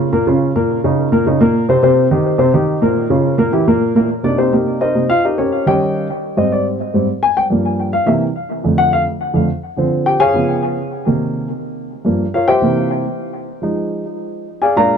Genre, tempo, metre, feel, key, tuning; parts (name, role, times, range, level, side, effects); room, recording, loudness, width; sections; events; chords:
jazz; 211 BPM; 4/4; straight; C minor from 4.1 s; A4 = 436 Hz
dark upright piano; solo; 0.0-15.0 s; F2 to Bb5; -13 LUFS; equal; analog delay
light reverb; close, detailed microphones; -13 LUFS; side -7 dB against mid
0.0-4.1 A section; 4.1-13.2 B section; 13.2-15.0 B section
upright piano solo 4.1-15.0
0.0 Bbm; 0.7 Eb5; 1.8 Eb6; 3.0 Bbm; 3.5 Edim/Bb; 4.1 Cm7; 5.2 Eb7; 6.4 Abmaj7; 7.5 Gm7; 8.1 C7; 8.6 F6; 9.8 Dm7b5; 10.3 Db7; 10.9 Cm7; 12.1 Gm7b5; 12.6 C7; 13.2 Fm7; 14.3 Bb7